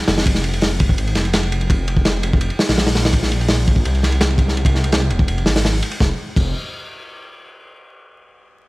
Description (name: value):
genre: drum and bass, jungle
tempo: 167 BPM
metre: 4/4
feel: straight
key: F minor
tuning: A4 = 444 Hz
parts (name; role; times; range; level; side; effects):
- detuned saw bass; bass; 0.1-6.5 s; Eb1 to C2; -19 LUFS; equal; none
- crunchy breakbeat drum kit; drums; 0.1-6.4 s; crash cymbal, hi-hat, kick drum, ride cymbal, snare drum; -17 LUFS; equal; none
room: little or no reverb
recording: vinyl crackle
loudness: -15 LUFS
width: side -21 dB against mid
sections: 0.3-6.0 A section; 6.0-7.4 B section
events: none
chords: none